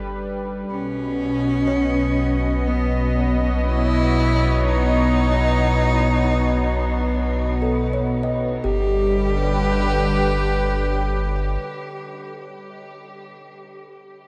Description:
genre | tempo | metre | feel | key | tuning
ambient | 61 BPM | 4/4 | straight | G lydian | A4 = 441 Hz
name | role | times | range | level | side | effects
warm analog pad | sustained chords | 0.0-12.7 s | B2 to G5 | -25 LUFS | equal | chorus
warm sub bass | bass | 0.0-11.6 s | G1 to B1 | -26 LUFS | equal | none
rich cello | melody | 0.7-12.3 s | B3 to G4 | -27 LUFS | equal | diffuse ambient delay
kalimba | arpeggios | 1.7-12.3 s | G4 to D#5 | -32 LUFS | equal | diffuse ambient delay
room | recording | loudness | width
wet cathedral reverb, RT60 6.5 s | none | -20 LUFS | mono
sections
0.0-8.6 A section; 8.6-12.6 B section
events
none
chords
0.0 G; 0.7 Badd9; 8.6 G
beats
| 0.69 1.68 2.67 3.65 | 4.63 5.62 6.62 7.63 | 8.64 9.64 10.62 11.61

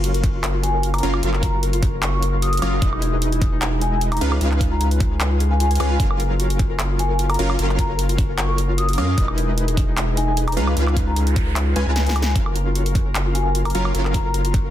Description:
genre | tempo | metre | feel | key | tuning
future bass | 151 BPM | 4/4 | half-time | F# major | A4 = 440 Hz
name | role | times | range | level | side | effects
concert harp | arpeggios | 0.0-14.7 s | D#4 to A#5 | -28 LUFS | left 4 dB | sidechain pumping, digital delay
supersaw stab | riff | 0.0-14.7 s | F#3 to A#5 | -27 LUFS | right 1 dB | sidechain pumping, digital delay
saturated sub bass | bass | 0.0-14.7 s | E1 to F#2 | -21 LUFS | equal | sidechain pumping
big-room dance drum kit | drums | 0.0-14.6 s | handclaps, hi-hat, snare drum, woodblock | -27 LUFS | right 1 dB | none
electronic kick drum | drums | 0.2-14.6 s | none | -20 LUFS | equal | overdrive
vibraphone with soft mallets | melody | 0.6-14.3 s | G#5 to D#6 | -28 LUFS | left 2 dB | sidechain pumping, dub echo
noise sweep | sound effects | 11.1-12.4 s | none | -38 LUFS | right 4 dB | none
room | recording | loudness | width
little or no reverb | dense, heavily limited modern master | -17 LUFS | side -12 dB against mid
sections
0.0-14.7 A section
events
noise sweep 11.1-12.4; drum fill 12.0-12.4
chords
0.0 F#maj7; 2.8 Emaj7; 4.2 C#7; 6.0 F#maj7; 9.2 Emaj7; 10.6 C#7; 12.4 F#maj7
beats
0.04 0.44 0.83 | 1.23 1.63 2.03 2.42 | 2.82 3.22 3.62 4.01 | 4.41 4.81 5.21 5.60 | 6.00 6.40 6.79 7.19 | 7.59 7.99 8.38 8.78 | 9.18 9.57 9.97 10.37 | 10.77 11.16 11.56 11.96 | 12.36 12.75 13.15 13.55 | 13.95 14.34

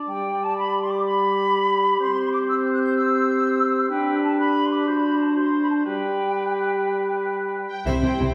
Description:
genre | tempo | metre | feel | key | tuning
cinematic, heroic adventure film score | 124 BPM (dotted quarters) | 12/8 | uneven beats | G major | A4 = 440 Hz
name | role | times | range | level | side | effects
warm oboe | second line | 0.0-7.7 s | B4 to D5 | -33 LUFS | equal | none
bright small flute group | second line | 0.1-7.7 s | G5 to G6 | -27 LUFS | equal | none
warm clarinet | second line | 0.1-7.7 s | F#4 to G4 | -28 LUFS | equal | none
mellow French horn section | sustained chords | 0.1-8.3 s | G3 to G4 | -28 LUFS | equal | none
warm symphonic violin section | melody | 7.7-8.3 s | E5 to G5 | -33 LUFS | equal | none
rich symphonic violin section | second line | 7.9-8.3 s | E4 to C5 | -32 LUFS | equal | none
dark symphonic viola section | accompaniment | 7.9-8.3 s | C4 | -28 LUFS | equal | none
clear symphonic double bass section | bass | 7.9-8.3 s | C2 | -28 LUFS | equal | none
rich studio cello section | bass | 7.9-8.3 s | C3 | -27 LUFS | equal | none
triangle | percussion | 7.9-8.3 s | none | -50 LUFS | equal | none
room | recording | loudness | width
wet scoring stage reverb, RT60 1.6 s | heard from further back in the room | -22 LUFS | mono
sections
0.0-7.9 A section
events
none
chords
0.1 G; 2.0 C; 3.9 G/D; 5.9 G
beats
| 0.10 0.57 1.05 1.52 | 2.00 2.48 2.95 3.43 | 3.91 4.39 4.87 5.36 | 5.86 6.36 6.87 7.37 | 7.87

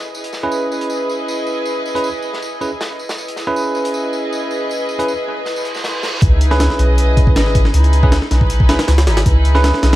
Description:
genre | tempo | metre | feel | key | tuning
drum and bass, jungle | 158 BPM | 4/4 | straight | C# minor | A4 = 441 Hz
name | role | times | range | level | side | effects
dark studio string section | sustained chords | 0.0-10.0 s | D#4 to D#5 | -22 LUFS | left 1 dB | vintage 12-bit sampler grit, low-pass filter
crunchy breakbeat drum kit | drums | 0.1-6.1 s | hi-hat, snare drum, tambourine | -28 LUFS | equal | high-pass filter on hats, high-pass filter on snare, high-pass filter on perc, high-pass filter on room
bell-like tine electric piano | stabs | 0.4-10.0 s | C#4 to B4 | -21 LUFS | right 2 dB | dub echo
reverse cymbal and sub drop | sound effects | 5.6-7.7 s | none | -25 LUFS | equal | none
soft dub sub bass | bass | 6.2-10.0 s | G#1 to C#2 | -13 LUFS | equal | none
breakbeat sampler-style drum kit | drums | 6.2-10.0 s | hi-hat, kick drum, snare drum | -14 LUFS | equal | none
room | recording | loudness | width
small room ambience | vinyl crackle | -14 LUFS | side -15 dB against mid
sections
0.0-6.2 A section; 6.2-10.0 B section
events
reverse cymbal 5.6-6.2; drop 6.2-10.0; impact 6.2-7.7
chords
0.0 C#m7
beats
| 0.14 0.52 0.90 1.28 | 1.66 2.04 2.42 2.80 | 3.18 3.56 3.94 4.32 | 4.70 5.08 5.46 5.84 | 6.22 6.60 6.98 7.36 | 7.74 8.12 8.50 8.88 | 9.26 9.64

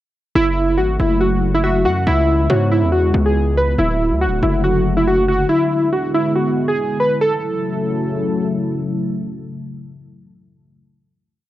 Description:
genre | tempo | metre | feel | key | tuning
hip hop, trap | 140 BPM | 4/4 | half-time | F# minor | A4 = 440 Hz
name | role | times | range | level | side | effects
warbly lo-fi synth keys | melody | 0.4-8.5 s | E4 to B4 | -17 LUFS | equal | chorus
dark analog pad | sustained chords | 0.7-10.8 s | C#3 to F#4 | -21 LUFS | left 1 dB | chorus
distorted 808-style bass | bass | 0.4-5.5 s | D1 to G#2 | -18 LUFS | equal | distortion
warbly dusty pluck | second line | 1.6-2.9 s | C#5 to F#5 | -25 LUFS | equal | chorus, analog delay
room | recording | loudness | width
little or no reverb | dry, gritty hardware recording | -15 LUFS | side -14 dB against mid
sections
0.4-7.2 breakdown; 7.2-10.6 final chord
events
none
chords
0.4 F#m7; 2.1 C#m7; 3.8 D; 5.5 E7; 7.2 F#m7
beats
| 0.35 0.78 1.21 1.64 | 2.07 2.50 2.93 3.35 | 3.78 4.21 4.64 5.07 | 5.50 5.93 6.35 6.78 | 7.21 7.64 8.07 8.50 | 8.93 9.35 9.78 10.21

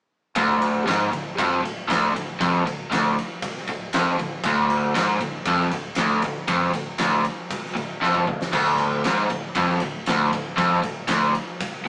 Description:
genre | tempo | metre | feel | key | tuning
blues rock power trio and southern rock | 117 BPM | 4/4 | straight | D minor | A4 = 440 Hz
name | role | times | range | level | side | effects
overdriven electric guitar | riff | 0.4-11.9 s | D2 to G#2 | -20 LUFS | equal | none
growling fingered electric bass | bass | 0.4-11.3 s | D1 to G#1 | -37 LUFS | equal | overdrive
big rock drum kit | drums | 0.4-11.7 s | crash cymbal, kick drum, ride cymbal, snare drum, toms | -28 LUFS | equal | none
room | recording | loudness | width
moderate studio reverb, RT60 0.6 s | rough rehearsal-room recording, small speaker sound | -20 LUFS | side -38 dB against mid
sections
0.4-11.9 A section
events
drum fill 8.0-8.5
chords
0.4 Dm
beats
| 0.36 0.87 1.38 1.88 | 2.39 2.90 3.41 3.92 | 4.43 4.95 5.46 5.97 | 6.48 6.99 7.50 8.02 | 8.53 9.04 9.55 10.06 | 10.58 11.09 11.60

